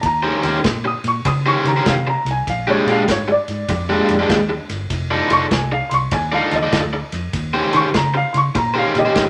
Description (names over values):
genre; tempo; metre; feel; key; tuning
electric blues shuffle; 99 BPM; 4/4; swing 66% on 8ths; unclear; A4 = 440 Hz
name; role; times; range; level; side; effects
dark upright piano; second line; 0.0-9.3 s; G4 to Eb6; -22 LUFS; equal; none
vintage muted fingered electric bass; bass; 0.0-9.3 s; F1 to Eb3; -26 LUFS; equal; none
natural country drum kit; drums; 0.0-9.3 s; kick drum, ride cymbal, snare drum; -27 LUFS; equal; none
raw garage guitar; riff; 0.2-9.2 s; Bb2 to D5; -21 LUFS; equal; overdrive, spring reverb
room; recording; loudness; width
moderate studio ambience, RT60 0.4 s; none; -18 LUFS; mono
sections
0.0-9.3 A section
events
upright piano solo 0.0-9.3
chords
0.0 Eb6; 2.5 Bb6; 4.9 F6; 7.3 Eb6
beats
| 0.03 0.64 1.25 1.86 | 2.47 3.08 3.69 4.30 | 4.91 5.51 6.12 6.73 | 7.34 7.94 8.55 9.16